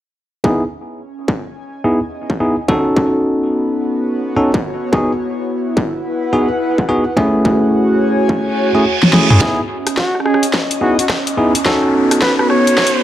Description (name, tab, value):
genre	glitch hop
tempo	107 BPM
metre	4/4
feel	swing 62% on 16ths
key	C# minor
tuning	A4 = 438 Hz
part	bell-like tine electric piano	stabs	0.4-13.0 s	A3 to A4	-16 LUFS	equal	vintage 12-bit sampler grit, sidechain pumping, low-pass filter, tape echo
part	electronic kick drum	drums	0.4-12.9 s	none	-19 LUFS	equal	distortion, high-pass filter on kick, studio reverb
part	airy breathy pad	texture	0.4-13.0 s	B3 to G#5	-20 LUFS	equal	chorus, sidechain pumping
part	reverse cymbal and riser	sound effects	8.5-13.0 s	none	-22 LUFS	right 3 dB	none
part	dubstep drum kit	drums	9.0-13.0 s	hi-hat, rim click, snare drum, toms	-16 LUFS	equal	high-pass filter on snare, studio reverb, high-pass filter on toms, high-pass filter on hats
part	mellow trumpet	melody	10.0-13.0 s	F#4 to C#5	-18 LUFS	equal	vintage 12-bit sampler grit, tape echo
room	light reverb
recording	dark, warm production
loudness	-13 LUFS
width	side -12 dB against mid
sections	0.4-9.4 A section; 9.4-13.0 B section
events	fade-in on analog synth pad 0.4-9.4; filter sweep on tine electric piano 0.4-9.4, 9.4-13.0; reverse cymbal 8.5-9.4; kick drops out 8.9-9.4; drum fill 9.0-9.4, 9.4-13.0; build-up 9.4-13.0; riser 9.4-13.0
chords	0.4 C#m9; 2.7 B7; 4.9 Emaj7; 7.2 F#m7; 9.4 C#m9; 11.7 B7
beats	| 0.44 1.00 1.56 2.12 | 2.69 3.25 3.81 4.37 | 4.93 5.49 6.05 6.61 | 7.17 7.73 8.29 8.85 | 9.41 9.97 10.54 11.10 | 11.66 12.22 12.78